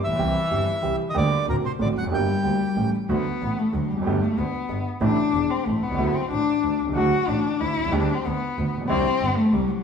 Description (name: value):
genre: tango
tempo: 187 BPM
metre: 3/4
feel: rubato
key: G harmonic minor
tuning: A4 = 441 Hz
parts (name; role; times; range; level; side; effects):
- bandoneon; melody; 0.0-2.9 s; Bb4 to G5; -27 LUFS; right 2 dB; none
- dark cello; second line; 0.0-9.8 s; Bb2 to F#4; -24 LUFS; left 4 dB; none
- clear double bass; bass; 0.0-9.7 s; E1 to D2; -30 LUFS; equal; none
- warm concert grand piano; accompaniment; 0.1-9.7 s; E1 to G4; -26 LUFS; right 3 dB; none
room: wet stone room reverb, RT60 1.3 s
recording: band playing live in one room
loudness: -21 LUFS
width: side -6 dB against mid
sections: 0.0-3.1 A section; 3.1-9.8 B section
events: cello solo 3.1-9.8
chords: 0.2 C; 1.2 Gm/D; 1.5 D7; 2.1 Gm; 2.8 A7; 3.1 D; 4.1 Gadd9; 5.0 Am; 6.0 Dadd9; 7.0 D; 7.9 G/D; 8.9 Cadd9